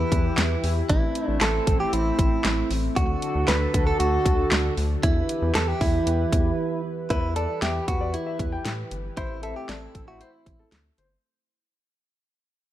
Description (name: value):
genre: synth-pop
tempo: 116 BPM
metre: 4/4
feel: straight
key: E minor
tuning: A4 = 440 Hz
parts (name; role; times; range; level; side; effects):
- direct-recorded clean electric guitar; melody; 0.0-10.7 s; E4 to B4; -27 LUFS; right 2 dB; slapback echo
- chorused pulse-width pad; sustained chords; 0.0-11.2 s; D3 to B4; -29 LUFS; left 1 dB; none
- rubbery square bass; bass; 0.0-11.2 s; G1 to A2; -26 LUFS; equal; none
- pop drum kit; drums; 0.1-11.1 s; handclaps, hi-hat, kick drum, snare drum; -25 LUFS; equal; none
- dark grand piano; second line; 7.1-11.1 s; A4 to G5; -35 LUFS; left 6 dB; slapback echo
room: light reverb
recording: none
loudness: -21 LUFS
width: side -13 dB against mid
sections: 0.0-7.1 A section; 7.1-11.2 B section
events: break 6.6-7.1; fade-out 7.1-11.2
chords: 0.0 Em; 0.9 Am; 3.0 D; 5.0 Em; 9.2 Am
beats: 0.38 | 0.90 1.41 1.93 2.45 | 2.96 3.48 4.00 4.52 | 5.03 5.55 6.07 6.58 | 7.10 7.62 8.14 8.65 | 9.17 9.69 10.21 10.72